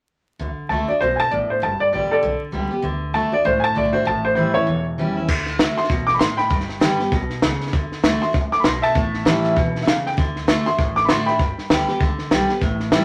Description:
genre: rockabilly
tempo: 196 BPM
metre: 4/4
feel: swing 59% on 8ths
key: D major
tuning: A4 = 440 Hz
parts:
  - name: picked steel-string acoustic guitar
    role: accompaniment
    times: 0.4-13.0 s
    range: E2 to G4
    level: -25 LUFS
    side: equal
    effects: none
  - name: upright bass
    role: bass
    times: 0.4-13.0 s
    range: E1 to D2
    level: -33 LUFS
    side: equal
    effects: none
  - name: warm upright piano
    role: melody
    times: 0.7-12.2 s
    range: A4 to D6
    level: -23 LUFS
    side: equal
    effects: none
  - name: compact cocktail drum kit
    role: drums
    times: 5.3-13.0 s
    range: crash cymbal, hi-hat, kick drum, snare drum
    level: -23 LUFS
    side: equal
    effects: none
room: moderate studio reverb, RT60 0.7 s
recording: vinyl crackle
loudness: -20 LUFS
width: mono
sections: 0.4-5.3 A section; 5.3-13.0 B section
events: none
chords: 0.4 D; 1.6 G; 2.8 D; 4.1 A7; 5.3 D; 6.5 G; 7.7 D; 9.0 A7; 10.2 D; 11.4 G

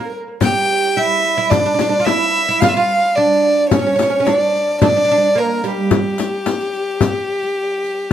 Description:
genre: Arabic maqam ensemble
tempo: 109 BPM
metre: 4/4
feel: straight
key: G maqam nikriz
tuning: A4 = 442 Hz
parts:
  - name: rich violin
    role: melody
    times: 0.0-8.1 s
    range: G4 to G5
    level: -16 LUFS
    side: equal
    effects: none
  - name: oud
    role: second line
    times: 0.0-8.1 s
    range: G3 to G4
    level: -21 LUFS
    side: right 6 dB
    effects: analog delay
  - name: frame drum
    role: percussion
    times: 0.4-7.1 s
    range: none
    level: -18 LUFS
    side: left 5 dB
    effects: none
  - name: riq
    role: percussion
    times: 0.4-7.9 s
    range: none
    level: -26 LUFS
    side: left 4 dB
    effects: none
room: moderate studio reverb, RT60 0.5 s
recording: none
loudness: -13 LUFS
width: side -10 dB against mid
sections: 0.0-8.1 A section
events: none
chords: none

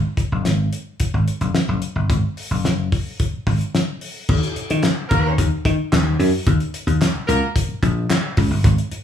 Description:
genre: funk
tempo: 110 BPM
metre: 4/4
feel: straight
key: unclear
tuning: A4 = 440 Hz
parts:
  - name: dry thumbed slap bass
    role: bass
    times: 0.0-8.9 s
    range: Gb1 to Eb3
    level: -20 LUFS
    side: equal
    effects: none
  - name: damped 70s drum kit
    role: drums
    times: 0.2-9.0 s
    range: crash cymbal, handclaps, hi-hat, kick drum, snare drum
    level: -20 LUFS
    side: left 1 dB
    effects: none
  - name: warm horn section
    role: second line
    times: 5.1-7.5 s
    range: Bb3 to Bb4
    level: -22 LUFS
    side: left 1 dB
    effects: none
room: moderate large studio reverb, RT60 0.8 s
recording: band playing live in one room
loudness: -17 LUFS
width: side -9 dB against mid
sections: 0.0-4.3 A section; 4.3-9.0 B section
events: none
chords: 0.0 Gbsus2; 4.3 N.C.

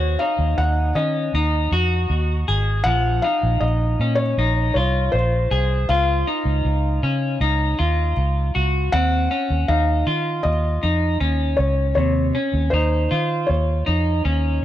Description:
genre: dream pop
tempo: 79 BPM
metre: 4/4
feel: straight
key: unclear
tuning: A4 = 435 Hz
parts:
  - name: felt-muted upright piano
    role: melody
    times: 0.0-14.6 s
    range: C5 to Gb5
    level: -24 LUFS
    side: left 2 dB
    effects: tape echo
  - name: clean electric guitar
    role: arpeggios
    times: 0.0-14.6 s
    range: C3 to Ab4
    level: -23 LUFS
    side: left 1 dB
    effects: wide subtle chorus, tape echo
  - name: vintage muted fingered electric bass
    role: bass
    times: 0.0-14.6 s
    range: Ab1 to Eb3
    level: -20 LUFS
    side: right 1 dB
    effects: none
room: small room ambience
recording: dry, gritty hardware recording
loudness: -18 LUFS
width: side -12 dB against mid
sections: 0.0-8.9 A section; 8.9-14.6 B section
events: none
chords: 0.0 Ebm7; 2.9 Bbm11; 5.9 Db; 8.9 Eb7(no3)

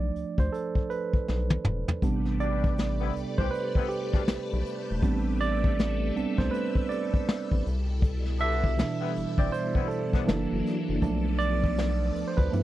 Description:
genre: R&B, neo-soul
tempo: 80 BPM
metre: 4/4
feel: swing 63% on 16ths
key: A minor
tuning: A4 = 441 Hz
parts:
  - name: barky tine electric piano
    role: accompaniment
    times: 0.0-12.6 s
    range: B2 to E5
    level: -29 LUFS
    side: right 5 dB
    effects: overdrive
  - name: rubbery square bass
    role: bass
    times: 0.0-12.6 s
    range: E1 to G2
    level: -29 LUFS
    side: left 1 dB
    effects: none
  - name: vintage brush drum kit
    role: drums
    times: 0.2-12.6 s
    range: hi-hat, kick drum, snare drum, toms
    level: -26 LUFS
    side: left 1 dB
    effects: none
  - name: phased string machine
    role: sustained chords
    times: 2.0-12.6 s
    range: B2 to E5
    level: -35 LUFS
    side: left 4 dB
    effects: ensemble chorus, phaser
  - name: mellow horn section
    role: stabs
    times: 2.4-10.2 s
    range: B2 to G4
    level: -36 LUFS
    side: left 16 dB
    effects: none
room: little or no reverb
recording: dry, close 1970s-style studio recording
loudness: -25 LUFS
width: side -14 dB against mid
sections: 0.0-12.6 A section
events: tine electric piano solo 0.0-12.6; drum fill 1.3-2.0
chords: 0.0 Bm7b5; 2.0 Am11; 7.7 Cmaj7; 10.3 F#7alt; 11.0 Bm7b5

